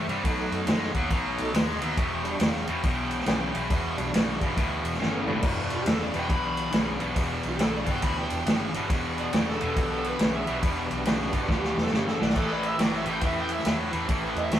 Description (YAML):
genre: blues rock power trio and southern rock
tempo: 139 BPM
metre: 4/4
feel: swing 64% on 8ths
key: E minor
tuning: A4 = 440 Hz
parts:
  - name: tonewheel organ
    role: sustained chords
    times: 0.0-14.6 s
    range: G3 to G5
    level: -37 LUFS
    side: right 2 dB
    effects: overdrive, chorus vibrato, slow rotary speaker
  - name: distorted electric guitar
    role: riff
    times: 0.0-14.6 s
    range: E2 to G#3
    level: -29 LUFS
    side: equal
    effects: overdrive
  - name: vintage muted picked electric bass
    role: bass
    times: 0.0-14.6 s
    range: E1 to G2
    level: -36 LUFS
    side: equal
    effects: none
  - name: vintage drum kit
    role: drums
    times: 0.1-14.6 s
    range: crash cymbal, kick drum, ride cymbal, snare drum, toms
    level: -27 LUFS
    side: equal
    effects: none
  - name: smooth overdriven lead guitar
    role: second line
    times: 5.7-14.6 s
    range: G4 to B5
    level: -32 LUFS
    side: equal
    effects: none
room: moderate studio reverb, RT60 0.6 s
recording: rough rehearsal-room recording, warm saturation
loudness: -24 LUFS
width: side -11 dB against mid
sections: 0.0-5.4 A section; 5.4-14.6 A section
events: drum fill 5.0-5.4, 11.5-12.4; lead electric guitar solo 5.4-14.6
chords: 0.2 B7; 2.0 Em7; 12.4 Am7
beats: | 0.24 0.67 1.11 1.54 | 1.97 2.41 2.84 3.27 | 3.71 4.14 4.57 5.00 | 5.44 5.87 6.30 6.73 | 7.17 7.60 8.03 8.46 | 8.90 9.33 9.76 10.20 | 10.63 11.06 11.49 11.92 | 12.36 12.79 13.22 13.65 | 14.09 14.52